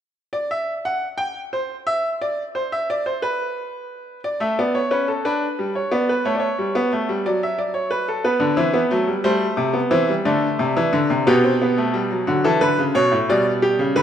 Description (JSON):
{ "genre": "classical, baroque-style 3-part fugue for grand piano", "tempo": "59 BPM (dotted quarters)", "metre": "6/8", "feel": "straight", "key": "G major", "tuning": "A4 = 440 Hz", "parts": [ { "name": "bright grand piano", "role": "solo", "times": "0.3-14.0 s", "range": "A2 to G5", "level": "-18 LUFS", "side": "equal", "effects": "none" } ], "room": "wet scoring stage reverb, RT60 2.0 s", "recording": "none", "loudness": "-18 LUFS", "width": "side -9 dB against mid", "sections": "0.2-14.0 A section", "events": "none", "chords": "0.2 N.C.; 4.2 D5; 5.2 G; 6.2 A7; 7.2 D/F#; 8.2 G; 9.2 Am7; 10.3 D5; 11.3 G/B; 12.3 D; 13.3 G/B", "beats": "| 0.17 1.19 | 2.20 3.21 | 4.22 5.22 | 6.24 7.24 | 8.24 9.25 | 10.26 11.27 | 12.28 13.29" }